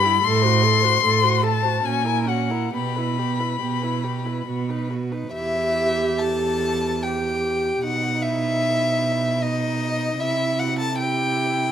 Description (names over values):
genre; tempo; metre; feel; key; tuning
classical, slow romantic movement for string quartet; 64-79 BPM; 3/4; rubato; E minor; A4 = 440 Hz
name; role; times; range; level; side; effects
dark violin; melody; 0.0-11.7 s; D#4 to C6; -24 LUFS; left 8 dB; none
warm violin; second line; 0.0-11.7 s; F#4 to A5; -25 LUFS; left 2 dB; none
dark viola; accompaniment; 0.0-11.7 s; B3 to A4; -27 LUFS; right 3 dB; none
warm cello; bass; 0.0-11.7 s; E2 to C3; -25 LUFS; right 4 dB; none
room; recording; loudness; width
moderate recital hall reverb, RT60 1.5 s; close, detailed microphones; -20 LUFS; side -9 dB against mid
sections
0.0-5.3 A section; 5.3-11.7 B section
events
none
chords
0.2 F#dim/A; 1.8 F#7/A#; 2.7 Em/B; 4.5 B; 5.3 Em; 7.8 B; 10.2 C